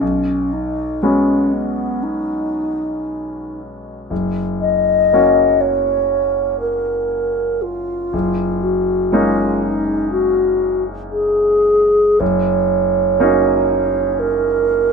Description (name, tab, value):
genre	classical, impressionist duo for alto flute and grand piano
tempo	60 BPM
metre	4/4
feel	rubato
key	F# major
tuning	A4 = 440 Hz
part	mellow hollow wooden-headed alto flute	melody	0.0-14.9 s	B3 to D#5	-16 LUFS	equal	none
part	clear concert grand piano	accompaniment	0.0-14.9 s	F#1 to F#4	-20 LUFS	left 1 dB	none
room	light reverb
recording	close, detailed microphones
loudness	-14 LUFS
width	side -5 dB against mid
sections	0.0-14.9 A section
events	none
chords	0.0 B69; 4.1 F#6; 8.1 D#m7/F#; 12.2 F#6